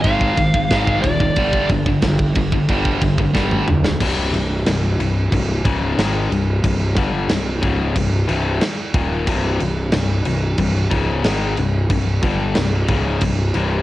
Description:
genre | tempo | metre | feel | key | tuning
heavy metal | 91 BPM | 4/4 | straight | C minor | A4 = 438 Hz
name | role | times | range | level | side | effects
high-gain lead guitar | melody | 0.0-1.6 s | D5 to F5 | -21 LUFS | right 1 dB | distortion, cassette tape, tape echo
high-gain distorted guitar | riff | 0.0-4.0 s | G2 to Ab3 | -22 LUFS | right 6 dB | distortion
tight distorted guitar | riff | 0.0-13.8 s | C2 to Ab3 | -22 LUFS | left 4 dB | distortion
fuzz picked electric bass | bass | 0.0-13.8 s | C1 to Ab1 | -21 LUFS | equal | overdrive
tight metal drum kit | drums | 0.0-13.7 s | crash cymbal, kick drum, ride cymbal, snare drum, toms | -21 LUFS | equal | none
room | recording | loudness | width
light reverb | home recording on cassette | -16 LUFS | side -16 dB against mid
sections
0.0-4.0 A section; 4.0-13.8 B section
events
drum fill 3.3-4.0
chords
0.0 Ab5; 1.4 G5; 4.0 Cm

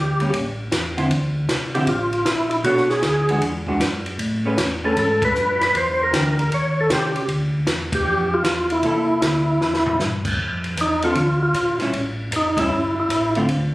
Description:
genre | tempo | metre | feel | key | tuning
soul jazz organ trio | 155 BPM | 4/4 | swing 66% on 8ths | unclear | A4 = 440 Hz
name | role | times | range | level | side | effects
percussive tonewheel organ | melody | 0.0-13.3 s | Eb4 to Db5 | -20 LUFS | equal | slow rotary speaker, overdrive, chorus vibrato
mellow tonewheel organ | bass | 0.0-13.7 s | F1 to A2 | -25 LUFS | equal | slow rotary speaker
vintage hollow-body jazz guitar | accompaniment | 0.2-13.5 s | D3 to C#5 | -24 LUFS | equal | none
compact cocktail drum kit | drums | 0.2-13.6 s | crash cymbal, hi-hat, kick drum, ride cymbal, snare drum, toms | -25 LUFS | equal | none
room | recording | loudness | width
moderate large studio reverb, RT60 0.8 s | recorded on a phone in the room, studio reverb | -18 LUFS | side -18 dB against mid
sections
0.0-10.4 A section; 10.4-13.7 B section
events
band accent 5.2, 7.9; drum fill 9.6-10.0; tonewheel organ solo 10.4-13.7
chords
0.3 A5; 1.1 Dm9; 2.6 Bm9; 3.4 E9; 4.2 Amaj9; 5.7 Em7b5; 6.5 Eb6; 7.3 Dmadd9; 8.8 C13; 10.4 F5; 11.9 A7(no3)

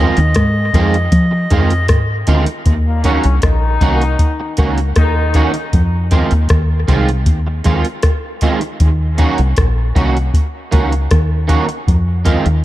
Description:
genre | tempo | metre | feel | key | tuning
dub reggae | 78 BPM | 4/4 | straight | Eb dorian | A4 = 440 Hz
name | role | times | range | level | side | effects
melodica | melody | 0.0-1.9 s | Eb5 | -22 LUFS | equal | dub echo
electric guitar at the edge of break-up | accompaniment | 0.0-12.5 s | Eb3 to Gb4 | -19 LUFS | right 3 dB | ensemble chorus, dub echo
deep dub fingered electric bass | bass | 0.0-12.6 s | Bb1 to F3 | -14 LUFS | equal | none
soft vintage rhythm box | drums | 0.2-12.6 s | hi-hat, kick drum, rim click | -15 LUFS | equal | overdrive
bright trombone section | second line | 2.9-5.5 s | Bb2 to Eb4 | -23 LUFS | left 5 dB | dub echo
room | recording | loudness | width
digital ambience | dark, warm production | -12 LUFS | side -15 dB against mid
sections
0.0-2.7 A section; 2.7-12.6 B section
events
none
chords
0.0 Fm7; 2.7 Ebm7; 5.7 Fm7; 8.8 Ebm7; 11.9 Fm7

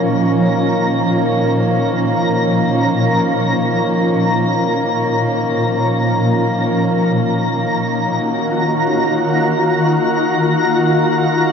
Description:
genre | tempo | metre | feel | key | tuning
ambient | free time | none | none | unclear | A4 = 439 Hz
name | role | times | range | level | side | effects
shimmering ambient pad | sustained chords | 0.0-11.5 s | Bb2 to Gb4 | -15 LUFS | equal | chorus, built-in reverb
hand-pumped harmonium | drone | 0.0-11.5 s | Eb3 to Bb3 | -22 LUFS | equal | none
twinkling granular texture | texture | 0.0-11.5 s | Bb5 to Bb6 | -21 LUFS | equal | built-in reverb
room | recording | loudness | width
wet spring reverb, RT60 2.4 s | cassette tape, nothing above 7.5 kHz | -14 LUFS | side -6 dB against mid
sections
0.0-11.5 A section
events
fade-out on harmonium 0.0-11.5; filter sweep on ambient pad 0.0-11.5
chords
0.0 Bbm; 7.3 Ebm

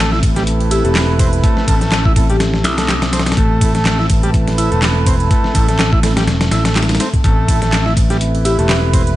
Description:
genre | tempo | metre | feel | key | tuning
breakbeat, breaks | 124 BPM | 4/4 | swing 56% on 16ths | A minor | A4 = 441 Hz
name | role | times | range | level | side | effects
dark analog pad | sustained chords | 0.0-9.2 s | A3 to A5 | -25 LUFS | left 2 dB | chorus, sidechain pumping
combo organ | riff | 0.0-9.0 s | G3 to E4 | -21 LUFS | equal | overdrive, tape echo
modern bright picked electric bass | bass | 0.0-9.2 s | E1 to B1 | -16 LUFS | equal | none
dusty soul sampler-style drum kit | drums | 0.1-9.1 s | hi-hat, kick drum, snare drum | -15 LUFS | equal | studio reverb
dark brass ensemble | stabs | 0.2-9.2 s | A3 to B4 | -24 LUFS | right 6 dB | vintage 12-bit sampler grit, tape echo
house drum kit | drums | 0.2-9.2 s | handclaps, hi-hat, ride cymbal | -24 LUFS | right 1 dB | studio reverb
buzzing marimba with soft mallets | melody | 0.7-2.6, 8.4-8.7 s | G4 | -22 LUFS | left 3 dB | small speaker sound, tape echo
room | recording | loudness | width
digital ambience | nothing above 10.7 kHz | -12 LUFS | side -15 dB against mid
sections
0.0-9.2 A section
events
none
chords
0.0 Am

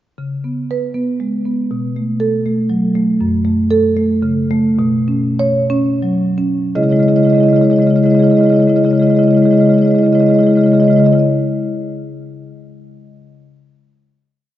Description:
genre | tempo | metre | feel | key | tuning
classical, contemporary piece for solo marimba | 55-81 BPM (dotted quarters) | 6/8 | rubato | C# minor | A4 = 440 Hz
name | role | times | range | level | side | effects
marimba with soft mallets | solo | 0.2-11.2 s | F#2 to D#5 | -12 LUFS | equal | none
room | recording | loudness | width
wet church reverb, RT60 3.3 s | dark, warm production, nothing above 7.5 kHz | -11 LUFS | side -13 dB against mid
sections
0.2-6.8 A section; 6.8-11.0 final chord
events
slowing down 2.5-6.8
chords
0.2 C#5; 1.7 B5; 3.2 F#m; 4.8 Bsus2; 6.8 C#madd9

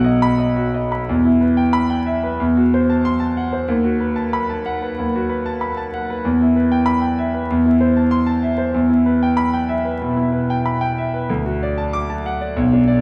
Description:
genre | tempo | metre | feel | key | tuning
classical, virtuoso piano study | 94 BPM | 4/4 | rubato | E minor | A4 = 439 Hz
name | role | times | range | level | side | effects
warm grand piano | solo | 0.0-13.0 s | B1 to D6 | -18 LUFS | equal | none
room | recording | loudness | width
wet large studio reverb, RT60 1.3 s | heard from further back in the room, vinyl crackle | -18 LUFS | mono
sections
0.0-1.1 A section; 1.1-13.0 B section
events
none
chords
0.0 B; 1.1 Em; 2.4 F#m7b5/E; 3.7 B7/D#; 6.2 Em; 7.5 Am/E; 8.8 Em; 11.3 D

